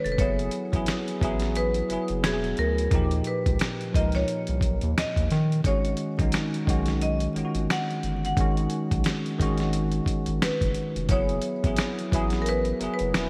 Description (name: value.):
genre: R&B, neo-soul.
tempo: 88 BPM.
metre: 4/4.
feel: swing 58% on 16ths.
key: unclear.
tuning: A4 = 440 Hz.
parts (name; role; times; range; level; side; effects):
marimba with hard mallets; melody; 0.0-13.3 s; G#4 to F#5; -33 LUFS; equal; none.
bell-like tine electric piano; accompaniment; 0.0-13.3 s; A#2 to A#4; -31 LUFS; equal; analog chorus.
round analog bass; bass; 0.1-13.3 s; E1 to D#3; -30 LUFS; equal; none.
dusty soul sampler-style drum kit; drums; 0.1-13.3 s; hi-hat, kick drum, snare drum; -30 LUFS; equal; none.
room: light reverb, digital ambience.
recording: bright 1980s-style digital production, vinyl crackle.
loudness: -26 LUFS.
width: mono.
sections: 0.0-13.3 A section.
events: none.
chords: 0.2 F#m9; 2.2 E9; 2.9 D#7b13; 5.6 G#m7; 11.1 F#m9.